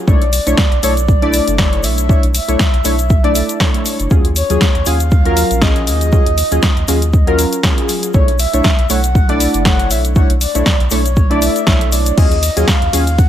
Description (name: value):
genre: deep house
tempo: 119 BPM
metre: 4/4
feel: swing 55% on 16ths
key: unclear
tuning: A4 = 440 Hz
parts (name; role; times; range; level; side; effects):
- warm analog keys; stabs; 0.0-13.0 s; Gb3 to D5; -18 LUFS; equal; chorus, sidechain pumping, digital delay
- breathy flute-like synth lead; melody; 0.1-13.3 s; Db5 to F#5; -21 LUFS; equal; wide subtle chorus, digital delay
- warm sub bass; bass; 0.1-13.3 s; F#1 to Eb2; -17 LUFS; equal; tube saturation, sidechain pumping
- electronic kick drum; drums; 0.1-13.3 s; none; -13 LUFS; equal; none
- egg shaker; percussion; 0.1-13.3 s; none; -24 LUFS; left 5 dB; none
- deep house drum kit; drums; 0.2-13.3 s; crash cymbal, hi-hat, ride cymbal, snare drum; -19 LUFS; equal; none
room: little or no reverb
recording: none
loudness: -11 LUFS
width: side -11 dB against mid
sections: 0.0-13.3 A section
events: none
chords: 0.1 Bm11; 4.1 Ebm11; 8.1 Bm11; 12.2 Ebm11